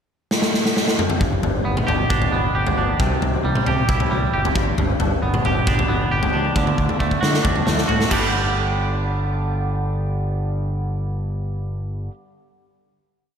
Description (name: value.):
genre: quiet-loud alternative rock.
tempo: 134 BPM.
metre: 4/4.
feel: straight.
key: G major.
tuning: A4 = 440 Hz.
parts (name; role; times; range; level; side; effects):
big rock drum kit; drums; 0.3-8.2 s; crash cymbal, kick drum, snare drum, toms; -20 LUFS; left 1 dB; none.
twangy electric guitar; arpeggios; 1.2-12.1 s; G2 to G4; -23 LUFS; right 2 dB; wide subtle chorus, slapback echo.
growling fingered electric bass; bass; 1.2-12.1 s; F#1 to D3; -24 LUFS; equal; overdrive.
room: moderate lush hall reverb, RT60 2.2 s.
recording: big arena sound.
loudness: -18 LUFS.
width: side -7 dB against mid.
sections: 0.0-1.2 pickup bar; 1.2-8.3 verse; 8.3-11.9 final hit.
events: drum fill 0.3-1.2, 6.6-8.3.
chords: 0.0 N.C.; 1.2 G; 3.0 C; 4.6 G; 6.6 D; 8.1 G.